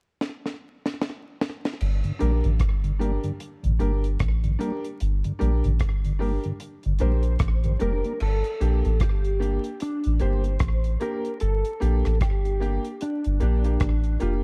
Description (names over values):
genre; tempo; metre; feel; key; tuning
roots reggae; 75 BPM; 4/4; swing 60% on 16ths; G minor; A4 = 441 Hz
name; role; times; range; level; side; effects
deep reggae drum kit; drums; 0.2-14.4 s; crash cymbal, hi-hat, kick drum, rim click, snare drum; -30 LUFS; equal; slapback echo
soft dub sub bass; bass; 1.8-14.4 s; F1 to Bb1; -25 LUFS; equal; none
mellow tonewheel organ; accompaniment; 2.0-8.1 s; G2 to D4; -33 LUFS; equal; slow rotary speaker, slapback echo
clear upright piano; stabs; 2.2-14.4 s; Bb3 to Bb4; -34 LUFS; equal; none
mellow electric guitar; melody; 7.0-14.3 s; D4 to C5; -33 LUFS; equal; ensemble chorus, dub echo
room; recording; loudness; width
studio reverb; dark, warm production, vinyl crackle; -25 LUFS; mono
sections
0.0-1.8 A section; 1.8-8.2 B section; 8.2-14.4 C section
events
drum fill 0.2-1.8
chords
0.0 N.C.; 1.8 Gm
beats
0.20 1.00 | 1.80 2.60 3.40 4.20 | 5.00 5.80 6.60 7.41 | 8.21 9.01 9.81 10.61 | 11.41 12.21 13.01 13.81